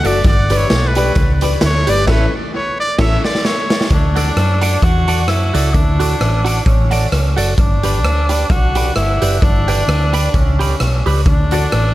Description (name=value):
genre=ska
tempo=131 BPM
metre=4/4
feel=swing 56% on 8ths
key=D major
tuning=A4 = 441 Hz
part: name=brilliant trumpet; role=melody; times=0.0-3.9 s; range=B4 to E5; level=-21 LUFS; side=equal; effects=dub echo
part: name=semi-hollow electric guitar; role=accompaniment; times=0.0-11.7 s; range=E4 to D5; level=-23 LUFS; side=right 4 dB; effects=phaser
part: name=dark upright piano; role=stabs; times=0.0-3.2, 11.5-11.7 s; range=C#4 to B4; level=-23 LUFS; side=left 5 dB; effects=none
part: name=hollow-body short-scale fingered electric bass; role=bass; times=0.0-11.9 s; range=F#1 to F#2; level=-16 LUFS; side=equal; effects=none
part: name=raw garage drum kit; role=drums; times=0.0-11.8 s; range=crash cymbal, hi-hat, kick drum, rim click, snare drum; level=-17 LUFS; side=equal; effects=dub echo
part: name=clear tenor saxophone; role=melody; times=3.9-11.9 s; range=C#4 to F#4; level=-20 LUFS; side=equal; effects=dub echo
room=small room ambience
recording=none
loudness=-12 LUFS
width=side -16 dB against mid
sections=0.0-3.9 A section; 3.9-11.9 B section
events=trumpet solo 0.0-3.9; band accent 2.1-3.9; drum fill 3.0-3.9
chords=0.2 G; 2.1 A; 3.9 D; 7.6 G; 11.3 D